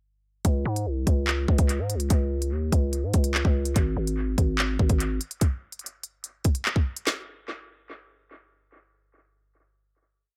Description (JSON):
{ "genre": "hip hop, drill", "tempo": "145 BPM", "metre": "4/4", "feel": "half-time", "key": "unclear", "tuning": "A4 = 440 Hz", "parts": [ { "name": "growling 808-style bass", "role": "bass", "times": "0.4-5.2 s", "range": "G#1 to G#2", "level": "-28 LUFS", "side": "equal", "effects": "none" }, { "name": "drill drum kit", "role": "drums", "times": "0.4-7.2 s", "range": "handclaps, hi-hat, kick drum, snare drum", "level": "-26 LUFS", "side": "equal", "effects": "analog delay" } ], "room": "digital ambience", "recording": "echo-heavy mix, faint mains hum", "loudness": "-25 LUFS", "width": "mono", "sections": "0.4-7.1 hook; 7.1-10.4 final hit", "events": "none", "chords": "none", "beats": "| 0.45 0.86 1.28 1.69 | 2.10 2.52 2.93 3.35 | 3.76 4.17 4.59 5.00 | 5.41 5.83 6.24 6.66 | 7.07" }